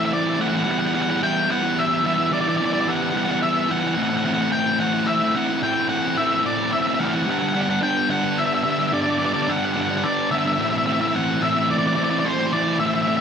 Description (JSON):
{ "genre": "rock", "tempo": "109 BPM", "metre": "3/4", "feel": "straight", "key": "unclear", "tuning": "A4 = 440 Hz", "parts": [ { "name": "octave-fuzz lead guitar", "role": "melody", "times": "0.0-13.2 s", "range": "C5 to G5", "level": "-22 LUFS", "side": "left 2 dB", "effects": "distortion, digital delay" }, { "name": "thick fuzz guitar", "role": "riff", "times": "0.0-13.2 s", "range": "G2 to E4", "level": "-21 LUFS", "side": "right 1 dB", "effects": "distortion" } ], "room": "light reverb, digital ambience", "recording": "none", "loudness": "-19 LUFS", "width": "side -7 dB against mid", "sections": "0.0-13.2 A section", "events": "none", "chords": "0.0 Am; 0.7 Em; 4.0 Am; 7.3 Gmaj7; 10.6 Am", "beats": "0.13 | 0.68 1.23 1.77 | 2.33 2.87 3.42 | 3.97 4.52 5.08 | 5.62 6.18 6.73 | 7.28 7.83 8.38 | 8.93 9.48 10.04 | 10.59 11.14 11.69 | 12.24 12.79" }